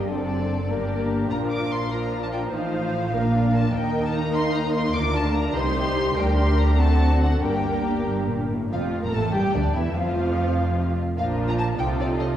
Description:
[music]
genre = quick classical-period movement for string orchestra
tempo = 98 BPM (dotted quarters)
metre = 6/8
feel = rubato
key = G minor, Bb major from 8.7 s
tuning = A4 = 440 Hz
[part]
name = dark studio violin section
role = second line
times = 0.0-12.4 s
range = D4 to C5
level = -29 LUFS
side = left 1 dB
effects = none
[part]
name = dark symphonic viola section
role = accompaniment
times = 0.0-12.4 s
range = D3 to Eb4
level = -27 LUFS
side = left 1 dB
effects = none
[part]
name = rich symphonic cello section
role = bass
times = 0.0-12.4 s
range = C2 to C3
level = -28 LUFS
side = right 2 dB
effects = none
[part]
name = rich symphonic double bass section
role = bass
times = 0.0-12.4 s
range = E1 to Eb2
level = -26 LUFS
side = right 1 dB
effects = none
[part]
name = dark studio violin section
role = melody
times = 0.1-12.3 s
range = D5 to D6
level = -30 LUFS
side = left 2 dB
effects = none
[sound]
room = wet scoring stage reverb, RT60 1.7 s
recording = heard from further back in the room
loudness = -20 LUFS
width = side -11 dB against mid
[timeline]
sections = 0.0-8.7 A section; 8.7-12.4 B section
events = none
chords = 0.1 D7/F#; 0.7 Gm; 1.3 Bb; 2.5 F7/A; 3.1 Bb; 3.7 Eb5; 4.9 Bb/D; 5.6 Cm; 6.2 Gm/D; 6.8 D7; 7.4 Gm; 8.7 Bb5/F; 9.3 Em7; 10.0 N.C.; 11.2 Bb; 11.8 F7/C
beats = | 0.07 0.68 | 1.30 1.91 | 2.52 3.13 | 3.74 4.34 | 4.94 5.55 | 6.16 6.78 | 7.42 8.07 | 8.71 9.34 | 9.96 10.57 | 11.17 11.78

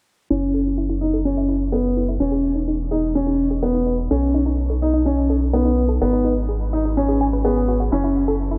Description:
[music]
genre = electronica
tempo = 126 BPM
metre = 4/4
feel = straight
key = F# dorian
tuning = A4 = 441 Hz
[part]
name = warm chamber string section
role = sustained chords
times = 0.3-8.6 s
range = B2 to B4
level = -41 LUFS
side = equal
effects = none
[part]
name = analog pluck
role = arpeggios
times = 0.3-8.6 s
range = D#4 to G#5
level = -29 LUFS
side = equal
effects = chorus, phaser, digital delay, shimmer reverb
[part]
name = clear upright piano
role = riff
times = 0.3-8.2 s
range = B3 to D#4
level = -22 LUFS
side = equal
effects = digital delay, shimmer reverb
[part]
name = round analog bass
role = bass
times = 0.3-8.6 s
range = E1 to B1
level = -25 LUFS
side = equal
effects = none
[sound]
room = moderate lush hall reverb, RT60 2.1 s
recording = dark, warm production, low-pass filter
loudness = -20 LUFS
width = mono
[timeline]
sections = 0.3-8.6 A section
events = filter sweep on synth arpeggio sound 0.3-8.6; filter sweep 0.3-8.6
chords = 0.3 F#m7; 2.2 Emaj7; 4.1 B7; 6.0 G#m7; 7.9 F#m7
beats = | 0.30 0.78 1.25 1.73 | 2.21 2.68 3.16 3.63 | 4.11 4.59 5.06 5.54 | 6.02 6.49 6.97 7.44 | 7.92 8.40

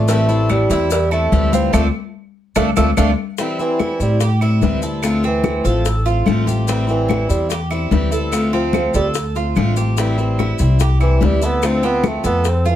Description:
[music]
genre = latin, Cuban son and guajira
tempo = 146 BPM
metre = 4/4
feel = straight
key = A minor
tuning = A4 = 437 Hz
[part]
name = warm bassoon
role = melody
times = 0.0-12.8 s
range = E3 to C4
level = -20 LUFS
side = right 2 dB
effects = none
[part]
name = picked acoustic archtop guitar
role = accompaniment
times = 0.0-12.8 s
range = D3 to F4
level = -23 LUFS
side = left 3 dB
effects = none
[part]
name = Cuban tres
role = arpeggios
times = 0.0-12.8 s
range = C4 to A4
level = -24 LUFS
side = right 5 dB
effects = none
[part]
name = upright bass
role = bass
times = 0.0-12.8 s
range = A1 to A2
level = -18 LUFS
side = equal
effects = none
[part]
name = congas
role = percussion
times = 0.1-12.8 s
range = none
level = -24 LUFS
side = left 6 dB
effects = none
[part]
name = cowbell and bongos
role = percussion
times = 0.1-12.8 s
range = none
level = -25 LUFS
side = left 6 dB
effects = none
[part]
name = maracas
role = percussion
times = 0.1-12.8 s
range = none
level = -33 LUFS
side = left 7 dB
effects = none
[part]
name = claves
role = percussion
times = 0.5-12.2 s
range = none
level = -30 LUFS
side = right 3 dB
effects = none
[sound]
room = moderate studio reverb, RT60 0.6 s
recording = none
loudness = -14 LUFS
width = side -11 dB against mid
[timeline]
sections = 0.0-3.4 A section; 3.4-12.8 B section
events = band accent 1.7-3.4; bassoon solo 3.4-12.8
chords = 0.1 Am7; 1.7 Dm7; 3.4 Am7; 5.0 Dm7; 6.7 Am7; 8.3 Dm7; 10.0 Am7; 11.6 Dm7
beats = | 0.08 0.49 0.91 1.32 | 1.73 2.14 2.56 2.97 | 3.38 3.79 4.21 4.62 | 5.03 5.44 5.86 6.27 | 6.68 7.09 7.50 7.92 | 8.33 8.74 9.15 9.57 | 9.98 10.39 10.80 11.21 | 11.62 12.04 12.45

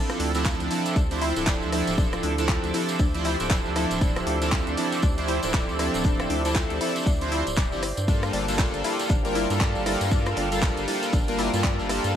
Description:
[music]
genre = deep house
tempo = 118 BPM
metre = 4/4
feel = swing 59% on 16ths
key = D minor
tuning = A4 = 440 Hz
[part]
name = warbly tape-like pad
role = sustained chords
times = 0.7-12.2 s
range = C5 to D6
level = -36 LUFS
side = right 2 dB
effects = chorus, built-in reverb, sidechain pumping
[part]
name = chorused polysynth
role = stabs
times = 0.0-12.1 s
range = F3 to C5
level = -26 LUFS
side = right 1 dB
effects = sidechain pumping, dub echo
[part]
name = airy breathy pad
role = texture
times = 0.0-12.2 s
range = G4 to E6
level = -36 LUFS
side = equal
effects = chorus, sidechain pumping
[part]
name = warbly dusty pluck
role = arpeggios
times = 0.1-12.0 s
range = D4 to D5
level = -34 LUFS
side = left 5 dB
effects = chorus, sidechain pumping, dub echo
[part]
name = house drum kit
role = drums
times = 0.1-12.1 s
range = handclaps, hi-hat, rim click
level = -32 LUFS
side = right 1 dB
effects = none
[part]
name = tambourine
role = percussion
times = 0.1-12.1 s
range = none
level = -38 LUFS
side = right 2 dB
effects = none
[part]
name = rubbery square bass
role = bass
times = 0.2-12.2 s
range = D1 to G2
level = -30 LUFS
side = equal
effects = sidechain pumping
[part]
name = raw garage drum kit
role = drums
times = 0.2-12.0 s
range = hi-hat, shaker, snare drum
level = -41 LUFS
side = equal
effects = none
[part]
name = electronic kick drum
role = drums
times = 0.5-11.8 s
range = none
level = -24 LUFS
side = equal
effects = none
[part]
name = string machine, violins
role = texture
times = 8.1-12.2 s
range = Bb4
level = -38 LUFS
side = equal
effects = none
[sound]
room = light reverb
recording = vinyl crackle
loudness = -22 LUFS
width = side -9 dB against mid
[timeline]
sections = 0.0-12.2 A section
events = none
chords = 0.0 Dm9; 7.8 Gm9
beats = 0.45 0.96 1.47 | 1.98 2.49 3.00 3.50 | 4.01 4.52 5.03 5.54 | 6.05 6.56 7.07 7.57 | 8.08 8.59 9.10 9.61 | 10.12 10.62 11.13 11.64 | 12.15

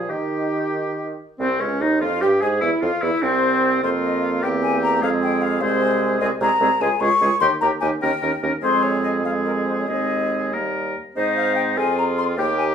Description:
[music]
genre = quick classical-period movement for wind quintet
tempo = 99 BPM (dotted quarters)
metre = 6/8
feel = rubato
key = F minor, Ab major from 6.2 s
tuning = A4 = 440 Hz
[part]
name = hollow silver concert flute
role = melody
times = 0.0-12.6 s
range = Bb4 to Db6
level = -23 LUFS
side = left 5 dB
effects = none
[part]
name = clear oboe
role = second line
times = 0.0-12.7 s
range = C4 to Bb4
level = -25 LUFS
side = left 1 dB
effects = none
[part]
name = clear French horn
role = accompaniment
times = 0.0-12.7 s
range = Eb3 to Ab4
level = -27 LUFS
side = equal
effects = none
[part]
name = warm clarinet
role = accompaniment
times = 0.0-12.7 s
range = Bb3 to C5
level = -26 LUFS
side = right 7 dB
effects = none
[part]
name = mellow bassoon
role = bass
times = 0.0-12.7 s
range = C2 to Eb3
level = -24 LUFS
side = right 2 dB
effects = none
[sound]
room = moderate large studio reverb, RT60 0.8 s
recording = small room ambience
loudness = -18 LUFS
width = side -8 dB against mid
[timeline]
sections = 0.0-1.4 A section; 1.4-11.2 B section; 11.2-12.7 C section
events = none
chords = 0.1 Eb; 1.4 Cm; 2.0 Fmadd9; 2.6 C/E; 3.8 F5; 4.4 C/E; 5.0 Fm; 6.2 Ab/C; 6.8 Db; 7.4 Eb; 8.0 Eb7; 8.6 Fm; 9.9 Ab/Eb; 10.5 Eb; 11.2 Ab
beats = | 0.10 0.76 | 1.40 2.02 | 2.62 3.23 | 3.83 4.43 | 5.03 5.62 | 6.21 6.81 | 7.41 8.02 | 8.63 9.25 | 9.89 10.54 | 11.17 11.78 | 12.38

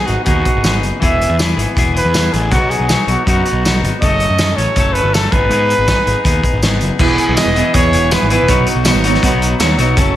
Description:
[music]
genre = indie rock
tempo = 161 BPM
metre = 4/4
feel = straight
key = B mixolydian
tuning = A4 = 442 Hz
[part]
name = breathy trumpet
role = melody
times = 0.0-8.6 s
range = F#4 to E5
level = -18 LUFS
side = right 1 dB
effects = slapback echo
[part]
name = cranked stack guitar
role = riff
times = 0.0-10.2 s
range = E3 to A4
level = -18 LUFS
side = left 5 dB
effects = overdrive, slapback echo
[part]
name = fuzz picked electric bass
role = bass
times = 0.1-10.1 s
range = E1 to G#2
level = -17 LUFS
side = equal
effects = overdrive
[part]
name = loose indie drum kit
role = drums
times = 0.1-10.1 s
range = crash cymbal, hi-hat, kick drum, snare drum, tambourine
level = -16 LUFS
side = equal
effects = none
[part]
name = electric guitar through a small old amp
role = riff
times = 7.0-10.2 s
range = E3 to C#5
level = -19 LUFS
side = right 8 dB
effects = lush chorus, slapback echo
[sound]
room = moderate recital hall reverb, RT60 1.3 s, small room ambience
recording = big arena sound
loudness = -11 LUFS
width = side -12 dB against mid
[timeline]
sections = 0.0-7.0 A section; 7.0-10.2 B section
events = none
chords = 0.0 G#m7; 1.0 E; 2.5 B; 4.0 F#m; 5.3 G#m; 7.0 E; 8.5 Badd9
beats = 0.27 0.65 | 1.02 1.39 1.77 2.14 | 2.52 2.89 3.27 3.64 | 4.01 4.39 4.76 5.13 | 5.51 5.88 6.25 6.63 | 7.00 7.37 7.74 8.11 | 8.48 8.86 9.23 9.60 | 9.97

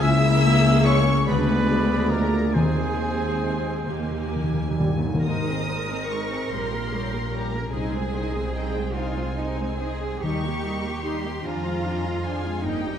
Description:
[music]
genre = classical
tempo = 42-51 BPM (dotted quarters)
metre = 6/8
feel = rubato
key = Ab major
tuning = A4 = 441 Hz
[part]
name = warm studio violin section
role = melody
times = 0.0-13.0 s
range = G5 to Fb6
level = -33 LUFS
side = left 1 dB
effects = none
[part]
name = mellow hollow concert flute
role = second line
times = 0.0-3.8 s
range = Ab5 to Fb6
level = -32 LUFS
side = left 2 dB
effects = none
[part]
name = rich studio violin section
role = second line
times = 0.0-13.0 s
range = F4 to Ab5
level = -37 LUFS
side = left 2 dB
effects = none
[part]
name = warm oboe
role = second line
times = 0.0-4.5 s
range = C5 to Fb5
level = -34 LUFS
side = right 2 dB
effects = none
[part]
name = rich studio viola section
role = accompaniment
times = 0.0-13.0 s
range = F3 to Bb4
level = -29 LUFS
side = equal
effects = none
[part]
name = mellow French horn section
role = sustained chords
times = 0.0-3.9 s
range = Ab3 to Fb4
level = -30 LUFS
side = left 4 dB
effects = none
[part]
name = concert harp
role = arpeggios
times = 0.0-13.0 s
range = F2 to Bb4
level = -28 LUFS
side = left 5 dB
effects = none
[part]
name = clear trumpet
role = stabs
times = 0.0-3.8 s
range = Ab4 to Fb5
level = -29 LUFS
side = right 2 dB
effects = none
[part]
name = rich studio cello section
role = bass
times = 0.0-13.0 s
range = Db2 to Bb4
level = -31 LUFS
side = right 2 dB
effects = none
[part]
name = rich studio double bass section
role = bass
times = 0.0-13.0 s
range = G1 to F2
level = -28 LUFS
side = right 2 dB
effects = none
[part]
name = clear trombone section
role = sustained chords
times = 0.9-4.9 s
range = Bb2 to Ab3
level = -36 LUFS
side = right 5 dB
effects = none
[part]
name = timpani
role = percussion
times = 2.6-5.2, 10.2-11.4 s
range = Eb3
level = -26 LUFS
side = left 1 dB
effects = none
[sound]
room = wet scoring stage reverb, RT60 1.6 s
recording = none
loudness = -21 LUFS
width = side -9 dB against mid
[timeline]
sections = 0.0-5.2 A section; 5.2-13.0 B section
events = timpani fill 3.9-5.2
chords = 0.0 Bbm7b5/Db; 1.3 Ddim7; 2.5 Ab/Eb; 3.9 Eb; 5.2 Ab; 6.5 Gdim/Bb; 7.7 Ab/C; 10.2 Eb; 11.4 Ddim/F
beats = | 0.02 1.27 | 2.54 3.86 | 5.25 6.51 | 7.73 8.95 | 10.23 11.44 | 12.63

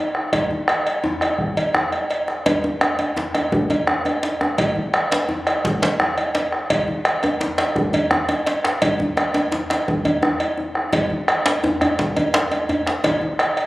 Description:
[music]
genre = west african traditional, West African drum ensemble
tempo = 113 BPM (dotted quarters)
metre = 12/8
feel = straight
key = none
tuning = none
[part]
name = bombo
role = percussion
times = 0.1-13.7 s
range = none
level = -22 LUFS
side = equal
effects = none
[part]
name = cowbell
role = percussion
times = 0.3-13.7 s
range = none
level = -23 LUFS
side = right 1 dB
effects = none
[part]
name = djembe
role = percussion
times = 0.3-13.7 s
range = none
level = -27 LUFS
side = left 1 dB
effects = none
[part]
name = djembe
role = percussion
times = 2.5-13.2 s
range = none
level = -23 LUFS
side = equal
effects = none
[sound]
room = wet recital hall reverb, RT60 1.4 s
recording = recorded on a phone in the room, club reverb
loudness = -18 LUFS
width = side -18 dB against mid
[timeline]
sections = 0.0-2.5 A section; 2.5-13.7 B section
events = drum fill 1.9-2.5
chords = none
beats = | 0.33 0.86 1.39 1.92 | 2.46 2.99 3.52 4.05 | 4.58 5.11 5.64 6.17 | 6.70 7.23 7.76 8.29 | 8.82 9.35 9.87 10.40 | 10.93 11.46 11.99 12.52 | 13.04 13.57

